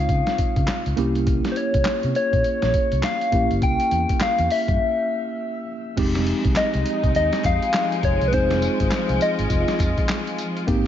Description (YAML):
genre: R&B, new jack swing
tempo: 102 BPM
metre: 4/4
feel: swing 61% on 16ths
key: F minor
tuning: A4 = 439 Hz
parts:
  - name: soft struck synth lead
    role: melody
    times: 0.0-10.4 s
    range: B4 to G5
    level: -23 LUFS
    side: left 2 dB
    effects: chorus, shimmer reverb
  - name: tine electric piano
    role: accompaniment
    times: 0.0-10.9 s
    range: Ab3 to Ab4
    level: -26 LUFS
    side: right 2 dB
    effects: medium stereo tremolo, shimmer reverb
  - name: vintage muted fingered electric bass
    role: bass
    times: 0.0-10.9 s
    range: F1 to Db3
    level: -24 LUFS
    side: equal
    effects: none
  - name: boom bap sampler-style drum kit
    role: drums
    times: 0.1-10.8 s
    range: crash cymbal, handclaps, hi-hat, kick drum, snare drum, tambourine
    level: -24 LUFS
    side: equal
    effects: none
  - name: group handclap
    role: percussion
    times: 0.7-10.3 s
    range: none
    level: -40 LUFS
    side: left 3 dB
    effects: none
  - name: warm studio string section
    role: sustained chords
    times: 6.0-10.9 s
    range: F3 to G4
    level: -28 LUFS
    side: left 2 dB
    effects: shimmer reverb
room: light reverb, digital ambience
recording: nothing above 7.5 kHz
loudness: -19 LUFS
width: side -10 dB against mid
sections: 0.0-6.0 A section; 6.0-10.9 B section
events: break 4.8-6.0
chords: 0.0 Dbmaj9; 1.0 C7b9; 6.0 Fm7